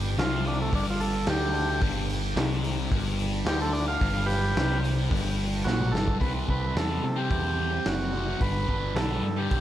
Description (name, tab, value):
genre	psychedelic rock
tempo	109 BPM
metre	4/4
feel	straight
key	unclear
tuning	A4 = 440 Hz
part	thick fuzz guitar	riff	0.0-9.6 s	G2 to C4	-30 LUFS	left 1 dB	distortion, phaser
part	growling picked electric bass	bass	0.0-9.6 s	F#1 to C3	-30 LUFS	equal	overdrive
part	combo organ	melody	0.2-9.6 s	A3 to F5	-31 LUFS	right 1 dB	spring reverb, analog delay
part	raw garage drum kit	drums	0.2-9.6 s	hi-hat, kick drum, snare drum, toms	-30 LUFS	equal	none
room	studio ambience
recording	none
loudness	-24 LUFS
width	side -12 dB against mid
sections	0.0-6.2 A section; 6.2-9.6 B section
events	transistor combo organ solo 0.0-6.2; drum fill 5.7-6.2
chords	0.0 G5; 6.2 C; 8.4 G